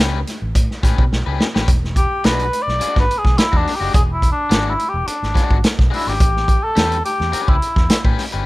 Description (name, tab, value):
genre	funk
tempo	106 BPM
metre	4/4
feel	straight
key	unclear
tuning	A4 = 440 Hz
part	crunchy overdriven guitar	accompaniment	0.0-8.5 s	G#3 to B4	-27 LUFS	left 7 dB	none
part	vintage muted fingered electric bass	bass	0.0-8.4 s	E1 to B2	-22 LUFS	equal	none
part	vintage drum kit	drums	0.3-8.4 s	hi-hat, kick drum, snare drum	-16 LUFS	equal	none
part	mellow cor anglais	melody	2.0-8.0 s	D4 to D5	-20 LUFS	left 1 dB	slapback echo
room	small room ambience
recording	rough home demo mix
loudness	-15 LUFS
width	side -19 dB against mid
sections	0.0-1.7 A section; 1.7-8.5 B section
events	drum fill 1.1-1.7; cor anglais solo 1.7-8.5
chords	0.0 A9; 1.7 E9; 6.2 A9